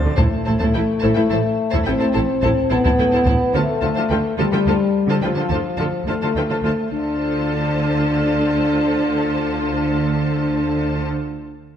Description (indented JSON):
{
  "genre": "cinematic, epic orchestral film score",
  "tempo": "71 BPM (dotted quarters)",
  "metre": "12/8",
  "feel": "straight",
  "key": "D dorian",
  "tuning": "A4 = 445 Hz",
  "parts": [
    { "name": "rich chamber viola section", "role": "accompaniment", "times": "0.0-11.1 s", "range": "D3 to A4", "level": "-26 LUFS", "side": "right 1 dB", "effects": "none" },
    { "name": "rich symphonic double bass section", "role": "bass", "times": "0.1-11.1 s", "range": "A1 to D2", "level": "-25 LUFS", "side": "right 3 dB", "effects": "none" },
    { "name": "dark symphonic violin section", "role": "second line", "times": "0.2-11.1 s", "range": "B4 to A5", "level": "-27 LUFS", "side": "left 4 dB", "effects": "none" },
    { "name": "mellow French horn section", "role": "sustained chords", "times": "0.2-11.1 s", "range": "F3 to D4", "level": "-20 LUFS", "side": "left 2 dB", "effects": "none" },
    { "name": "rich symphonic cello section", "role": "bass", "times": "0.2-11.1 s", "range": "A2 to D3", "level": "-25 LUFS", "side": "right 3 dB", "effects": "none" },
    { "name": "taiko ensemble", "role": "drums", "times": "0.2-3.8 s", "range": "none", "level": "-22 LUFS", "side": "equal", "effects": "none" }
  ],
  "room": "wet scoring stage reverb, RT60 1.5 s",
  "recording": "none",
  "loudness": "-16 LUFS",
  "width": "side -9 dB against mid",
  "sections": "0.2-6.9 A section; 6.9-10.3 B section",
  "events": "none",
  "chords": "0.2 Am; 3.5 Dm; 6.9 Dm7"
}